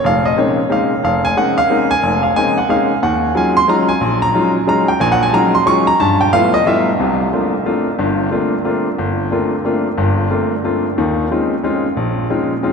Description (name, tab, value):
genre	jazz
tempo	181 BPM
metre	3/4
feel	swing 63% on 8ths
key	unclear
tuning	A4 = 440 Hz
part	clear grand piano	solo	0.0-12.7 s	F1 to Db6	-13 LUFS	equal	none
room	wet cathedral reverb, RT60 5.3 s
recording	in a vast, echoing space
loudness	-13 LUFS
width	side -5 dB against mid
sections	0.0-7.0 A section; 7.0-12.7 B section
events	none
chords	0.0 Bbm11; 3.0 Ebm11; 6.0 G13; 7.0 C13sus4; 11.0 Eb13sus4